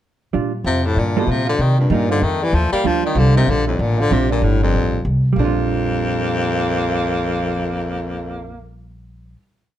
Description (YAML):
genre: jazz, small-group swing and bop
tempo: 191 BPM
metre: 4/4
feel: swing 63% on 8ths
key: Bb major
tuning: A4 = 438 Hz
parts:
  - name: hollow-body jazz guitar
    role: accompaniment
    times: 0.3-9.4 s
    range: G3 to A4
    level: -23 LUFS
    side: right 8 dB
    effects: none
  - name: upright bass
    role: bass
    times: 0.3-9.3 s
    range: G1 to C3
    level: -20 LUFS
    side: equal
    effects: none
  - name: clear tenor saxophone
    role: second line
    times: 0.6-8.6 s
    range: A2 to Bb3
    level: -26 LUFS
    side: right 5 dB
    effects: none
  - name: bright baritone saxophone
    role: melody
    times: 0.7-8.7 s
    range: F2 to G3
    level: -20 LUFS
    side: left 3 dB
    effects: none
room: moderate club reverb, RT60 0.9 s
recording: dark, warm production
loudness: -16 LUFS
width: side -11 dB against mid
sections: 0.3-5.4 A section; 5.4-7.9 final chord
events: none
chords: 0.3 Bb6; 1.0 Gm9; 1.6 Cm7; 2.2 Ebadd9; 2.8 Bb6